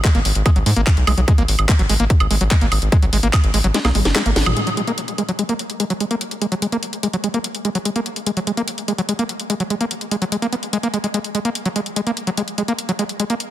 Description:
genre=psychedelic trance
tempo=146 BPM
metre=4/4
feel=straight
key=unclear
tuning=A4 = 442 Hz
part: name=overdriven acid bass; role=riff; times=0.0-13.3 s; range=F#3 to B3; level=-21 LUFS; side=equal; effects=distortion, auto-pan, sidechain pumping, ping-pong delay
part: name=electronic kick drum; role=drums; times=0.0-3.4 s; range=none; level=-14 LUFS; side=equal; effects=none
part: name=garage drum kit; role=drums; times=0.0-13.5 s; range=handclaps, hi-hat, snare drum, toms, woodblock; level=-22 LUFS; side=equal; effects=none
part: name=round analog bass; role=bass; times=0.1-4.5 s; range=F#1 to G#2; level=-18 LUFS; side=equal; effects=none
room=light reverb, digital ambience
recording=dense, heavily limited modern master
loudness=-17 LUFS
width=side -13 dB against mid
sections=0.0-4.6 A section; 4.6-13.5 B section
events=drop 0.0-4.6; kick drops out 3.7-4.6; drum fill 3.7-4.6; band accent 4.4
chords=0.0 N.C.; 4.6 F#add9 (rootless)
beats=0.05 0.46 0.87 | 1.28 1.69 2.10 2.51 | 2.92 3.33 3.74 4.16 | 4.57 4.98 5.39 5.80 | 6.21 6.62 7.03 7.44 | 7.85 8.27 8.68 9.09 | 9.50 9.91 10.32 10.73 | 11.14 11.55 11.96 12.37 | 12.79 13.20

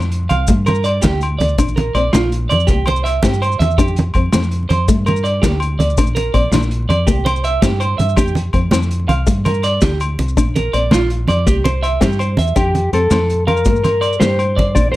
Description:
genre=highlife guitar band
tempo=109 BPM (dotted quarters)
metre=12/8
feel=straight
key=F major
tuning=A4 = 440 Hz
part: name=flamenco guitar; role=accompaniment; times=0.0-15.0 s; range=A3 to D4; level=-22 LUFS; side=left 6 dB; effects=none
part: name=fingered electric bass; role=bass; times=0.0-15.0 s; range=Bb1 to G2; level=-18 LUFS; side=equal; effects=none
part: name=maracas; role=percussion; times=0.0-14.8 s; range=none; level=-30 LUFS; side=left 5 dB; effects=none
part: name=vintage drum kit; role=drums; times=0.1-15.0 s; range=hi-hat, kick drum, snare drum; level=-19 LUFS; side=equal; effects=none
part: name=congas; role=percussion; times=0.2-14.8 s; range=none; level=-20 LUFS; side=right 2 dB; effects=none
part: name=semi-hollow electric guitar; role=arpeggios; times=0.3-15.0 s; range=F4 to F5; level=-20 LUFS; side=right 3 dB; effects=slapback echo
part: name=agogo bells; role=percussion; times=0.3-14.9 s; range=none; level=-27 LUFS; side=left 3 dB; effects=none
part: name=mellow electric guitar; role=melody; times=12.6-15.0 s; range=G4 to D5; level=-17 LUFS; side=left 2 dB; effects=spring reverb, plate reverb
room=light reverb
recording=none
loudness=-13 LUFS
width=side -16 dB against mid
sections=0.0-12.6 A section; 12.6-15.0 B section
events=none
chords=0.5 Gm; 1.6 Bb; 2.7 C; 3.8 Fsus2; 4.9 Gm; 6.0 Bb; 7.1 C; 8.2 Fsus2; 9.3 Gm; 10.4 Bb; 11.5 C; 12.6 Fsus2; 13.7 Gm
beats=0.48 1.03 | 1.58 2.13 2.68 3.23 | 3.78 4.33 4.88 5.43 | 5.98 6.52 7.07 7.62 | 8.17 8.72 9.27 9.82 | 10.37 10.91 11.46 12.01 | 12.56 13.11 13.66 14.21 | 14.76

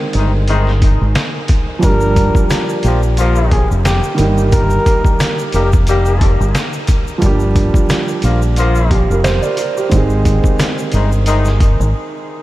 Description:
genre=hip hop, boom-bap hip-hop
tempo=89 BPM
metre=4/4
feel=swing 56% on 16ths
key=G phrygian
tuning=A4 = 440 Hz
part: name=dark baby grand piano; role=accompaniment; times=0.0-12.4 s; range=Eb3 to D5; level=-19 LUFS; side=right 3 dB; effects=high-pass filter, low-pass filter
part: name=mellow horn section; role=stabs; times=0.1-11.5 s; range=C3 to G4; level=-23 LUFS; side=left 3 dB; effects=high-pass filter, low-pass filter, tape echo
part: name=deep dub fingered electric bass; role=bass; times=0.1-11.9 s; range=F1 to Bb1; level=-14 LUFS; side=equal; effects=none
part: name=trip hop sampler-style drum kit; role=drums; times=0.1-11.8 s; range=hi-hat, kick drum, snare drum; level=-16 LUFS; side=equal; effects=none
part: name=trumpet with bucket mute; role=melody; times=1.8-5.7 s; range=G4 to Bb4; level=-22 LUFS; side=left 1 dB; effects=high-pass filter, low-pass filter, tape echo
part: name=egg shaker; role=percussion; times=1.8-11.9 s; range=none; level=-36 LUFS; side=left 6 dB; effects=none
room=light reverb, small room ambience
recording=vinyl crackle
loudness=-11 LUFS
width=side -16 dB against mid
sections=0.0-12.4 A section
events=break 11.9-12.4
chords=0.0 Ab; 1.8 Gm7; 4.2 Eb; 7.2 Gm7; 9.9 Ab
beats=0.48 1.16 | 1.83 2.50 3.18 3.85 | 4.53 5.20 5.88 6.55 | 7.22 7.90 8.57 9.25 | 9.92 10.60 11.27 11.94

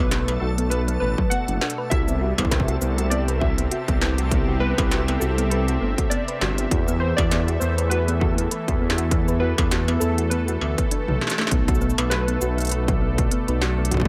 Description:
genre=IDM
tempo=100 BPM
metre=4/4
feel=swing 56% on 16ths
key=B phrygian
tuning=A4 = 441 Hz
part: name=warbly lo-fi synth keys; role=melody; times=0.0-13.6 s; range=A4 to F#5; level=-31 LUFS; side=equal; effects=chorus, tape echo
part: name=warm analog pad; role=sustained chords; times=0.0-14.1 s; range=B2 to E5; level=-32 LUFS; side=equal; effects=chorus
part: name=thumb-piano-like synth pluck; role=arpeggios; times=0.0-14.0 s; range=F#3 to B4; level=-32 LUFS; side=equal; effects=chorus, vintage 12-bit sampler grit, tape echo
part: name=dark detuned saw bass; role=bass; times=0.0-14.1 s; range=F#1 to E2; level=-25 LUFS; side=equal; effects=none
part: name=backwards swelling texture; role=texture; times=0.2-11.5 s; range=A3 to A4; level=-41 LUFS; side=equal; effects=none
part: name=industrial drum kit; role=drums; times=0.1-14.0 s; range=cabasa, hi-hat, snare drum, struck metal, toms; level=-29 LUFS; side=equal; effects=none
part: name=electronic kick drum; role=drums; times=1.2-14.1 s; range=none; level=-26 LUFS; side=equal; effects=distortion
room=little or no reverb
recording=none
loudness=-22 LUFS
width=mono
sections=0.0-11.5 A section; 11.5-14.1 A section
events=kick drops out 10.9-11.5; drum fill 11.1-11.5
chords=0.0 Bm7; 1.9 C; 6.7 Esus4; 11.5 Bm7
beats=0.11 0.71 1.31 | 1.91 2.51 3.11 3.71 | 4.31 4.91 5.51 6.11 | 6.71 7.31 7.91 8.51 | 9.11 9.71 10.31 10.91 | 11.51 12.11 12.71 13.31 | 13.91

